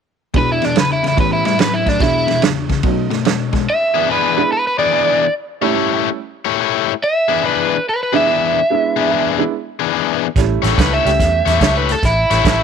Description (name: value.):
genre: electric blues shuffle.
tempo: 144 BPM.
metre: 4/4.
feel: swing 66% on 8ths.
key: E mixolydian.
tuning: A4 = 440 Hz.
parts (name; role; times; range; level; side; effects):
warm upright piano; accompaniment; 0.3-11.6 s; E2 to G4; -22 LUFS; right 13 dB; none.
crunchy overdriven guitar; riff; 0.3-12.6 s; E2 to C#5; -18 LUFS; left 13 dB; none.
vintage drum kit; drums; 0.3-3.6, 10.4-12.6 s; hi-hat, kick drum, ride cymbal, snare drum; -18 LUFS; right 4 dB; none.
overdriven electric guitar; melody; 0.4-12.6 s; D4 to E5; -16 LUFS; right 1 dB; none.
vintage muted fingered electric bass; bass; 10.4-12.6 s; A1 to E2; -18 LUFS; equal; none.
room: little or no reverb.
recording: 1960s-style stereo with parts hard left and right.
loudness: -14 LUFS.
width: side -7 dB against mid.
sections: 0.3-3.7 A section; 3.7-12.6 B section.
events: none.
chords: 0.3 E7; 1.2 A7; 2.0 E7; 2.8 B7; 3.7 E7; 5.3 A7; 7.0 E7; 10.4 A7.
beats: | 0.34 0.75 1.17 1.59 | 2.01 2.42 2.84 3.26 | 3.68 4.09 4.51 4.93 | 5.35 5.76 6.18 6.60 | 7.01 7.43 7.85 8.27 | 8.69 9.10 9.52 9.94 | 10.36 10.77 11.19 11.61 | 12.03 12.45.